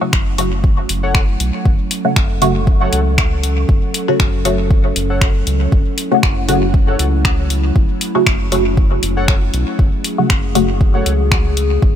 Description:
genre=dub techno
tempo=118 BPM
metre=4/4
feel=swing 55% on 16ths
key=F# minor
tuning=A4 = 440 Hz
part: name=warbly tape-like pad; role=sustained chords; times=0.0-12.0 s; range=F#3 to A4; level=-23 LUFS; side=equal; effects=chorus, built-in reverb, sidechain pumping
part: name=filtered dub chord stab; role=stabs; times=0.0-10.7 s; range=C#3 to F#4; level=-19 LUFS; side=equal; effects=phaser, sidechain pumping, dub echo
part: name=round analog bass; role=bass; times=0.1-11.9 s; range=F#1 to C#2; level=-18 LUFS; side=equal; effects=sidechain pumping
part: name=deep house drum kit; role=drums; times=0.1-11.7 s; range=finger snaps, hi-hat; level=-21 LUFS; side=left 1 dB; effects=overdrive, dub echo
part: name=electronic kick drum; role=drums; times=0.1-11.9 s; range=none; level=-14 LUFS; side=equal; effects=overdrive
part: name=warbly lo-fi synth keys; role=riff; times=1.0-11.1 s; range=A4 to F#5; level=-27 LUFS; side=left 2 dB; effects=chorus, sidechain pumping, dub echo
room=little or no reverb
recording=none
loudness=-13 LUFS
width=side -10 dB against mid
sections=0.0-12.0 A section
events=filter sweep on synth stab 0.0-12.0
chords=0.0 F#m

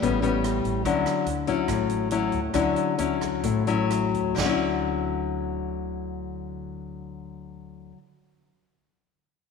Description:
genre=bossa nova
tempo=123-144 BPM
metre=4/4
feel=straight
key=D major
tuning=A4 = 438 Hz
part: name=nylon-string guitar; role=accompaniment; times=0.0-8.1 s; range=A2 to E4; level=-24 LUFS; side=left 6 dB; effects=none
part: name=upright bass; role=bass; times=0.0-7.9 s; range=A1 to D2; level=-35 LUFS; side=right 2 dB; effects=none
part: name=swinging big-band drum kit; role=drums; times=0.0-4.5 s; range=crash cymbal, hi-hat, kick drum, rim click, snare drum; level=-34 LUFS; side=right 7 dB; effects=none
room=wet echo chamber reverb, RT60 1.8 s, studio reverb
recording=1960s-style stereo with parts hard left and right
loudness=-23 LUFS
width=side -5 dB against mid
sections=0.0-4.4 A section; 4.4-8.3 B section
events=slowing down 0.8-4.4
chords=0.0 A9; 0.8 Dmaj9

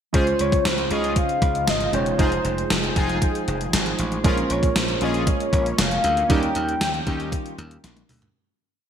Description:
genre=1980s-style pop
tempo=117 BPM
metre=4/4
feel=straight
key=unclear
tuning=A4 = 441 Hz
part: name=warm analog keys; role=accompaniment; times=0.1-8.4 s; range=G3 to C5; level=-28 LUFS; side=right 3 dB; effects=chorus
part: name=sweeping resonant pad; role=sustained chords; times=0.1-8.3 s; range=Db3 to G5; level=-32 LUFS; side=right 1 dB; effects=chorus
part: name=analog synth brass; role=stabs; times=0.1-7.3 s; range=Db4 to Ab4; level=-30 LUFS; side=left 2 dB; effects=chorus
part: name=slap bass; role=bass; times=0.1-8.3 s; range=Fb1 to Eb2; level=-27 LUFS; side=equal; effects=none
part: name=gated 80s digital drum machine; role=drums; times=0.1-8.3 s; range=hi-hat, kick drum, snare drum, tambourine, toms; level=-23 LUFS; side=equal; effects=gated reverb, gated reverb snare, overdrive
part: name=mellow horn-like synth lead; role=melody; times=0.2-7.8 s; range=Ab4 to G5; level=-25 LUFS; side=left 1 dB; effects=chorus
room=moderate lush hall reverb, RT60 1.8 s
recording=bright 1980s-style digital production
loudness=-19 LUFS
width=side -8 dB against mid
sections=0.1-8.3 pre-chorus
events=fade-out 6.3-8.3; drum fill 7.8-8.3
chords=0.1 Dbmaj7; 2.2 Fm7; 4.2 Bbm7; 6.3 Eb7

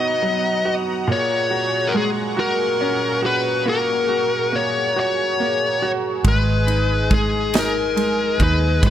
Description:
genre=six-eight pop ballad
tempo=46 BPM (dotted quarters)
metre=6/8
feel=straight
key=unclear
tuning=A4 = 445 Hz
part: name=smooth overdriven lead guitar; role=melody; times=0.0-8.9 s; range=G#4 to D#5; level=-20 LUFS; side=left 3 dB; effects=ping-pong delay
part: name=bright grand piano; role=accompaniment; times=0.0-8.9 s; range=A#2 to F#4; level=-24 LUFS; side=right 3 dB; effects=none
part: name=warm analog pad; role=sustained chords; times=0.0-8.9 s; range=A#2 to D#6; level=-27 LUFS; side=equal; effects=chorus, tremolo
part: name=vintage muted fingered electric bass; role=bass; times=6.2-8.9 s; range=G#1 to D#2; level=-21 LUFS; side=equal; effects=none
part: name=modern studio drum kit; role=drums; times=6.2-8.9 s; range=kick drum, ride cymbal, snare drum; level=-21 LUFS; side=equal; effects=none
room=light reverb, studio reverb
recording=none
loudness=-17 LUFS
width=side -11 dB against mid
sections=0.0-8.9 A section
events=none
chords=0.0 Bmaj7; 1.1 F#add9/A#; 6.2 G#m

